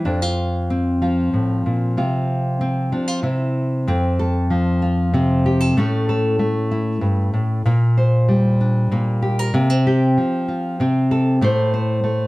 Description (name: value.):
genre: folk.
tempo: 95 BPM.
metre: 3/4.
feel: straight.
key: F major.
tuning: A4 = 441 Hz.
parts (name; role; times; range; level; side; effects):
nylon-string guitar; solo; 0.0-12.3 s; F2 to C5; -16 LUFS; equal; none.
room: moderate studio reverb, RT60 0.8 s.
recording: dark, warm production.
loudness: -16 LUFS.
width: side -20 dB against mid.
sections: 0.0-3.9 A section; 3.9-12.3 B section.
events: none.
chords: 0.1 F; 2.0 Csus4; 3.2 C; 3.9 F; 5.8 A; 7.7 Gm/Bb; 9.5 Csus4; 10.8 C5; 11.4 Am.